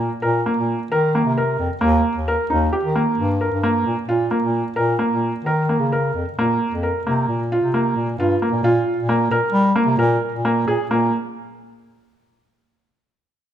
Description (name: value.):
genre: contemporary instrumental, chamber music in an uneven meter.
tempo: 132 BPM.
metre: 5/4.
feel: straight.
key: Bb dorian.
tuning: A4 = 440 Hz.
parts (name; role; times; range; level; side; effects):
felt-muted upright piano; arpeggios; 0.0-11.1 s; Bb3 to Bb4; -20 LUFS; right 1 dB; none.
breathy bass clarinet; bass; 0.0-11.1 s; Eb2 to G3; -21 LUFS; left 1 dB; none.
room: moderate recital hall reverb, RT60 1.6 s.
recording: none.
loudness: -17 LUFS.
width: side -10 dB against mid.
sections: 0.0-6.4 A section; 6.4-10.9 B section; 10.9-13.2 C section.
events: none.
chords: 0.0 Bbsus2; 1.8 Eb; 4.1 Bbm; 6.4 Bbsus2; 10.9 N.C..